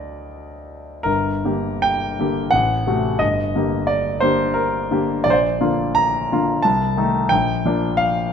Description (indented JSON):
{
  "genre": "classical, romantic character piece for solo piano",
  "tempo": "72-92 BPM",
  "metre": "3/4",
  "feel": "rubato",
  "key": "G minor",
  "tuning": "A4 = 440 Hz",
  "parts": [
    { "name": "clear concert grand piano", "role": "solo", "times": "0.0-8.3 s", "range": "G1 to Bb5", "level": "-17 LUFS", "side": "equal", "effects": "none" }
  ],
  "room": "moderate recital hall reverb, RT60 1.8 s",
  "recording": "close, detailed microphones",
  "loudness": "-17 LUFS",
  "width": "side -7 dB against mid",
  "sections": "0.0-1.1 A section; 1.1-8.3 B section",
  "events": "none",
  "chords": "0.0 D; 1.1 Gm; 2.5 F#dim/A; 3.2 Gm; 5.2 Bb; 6.6 Adim/C; 7.3 Bb"
}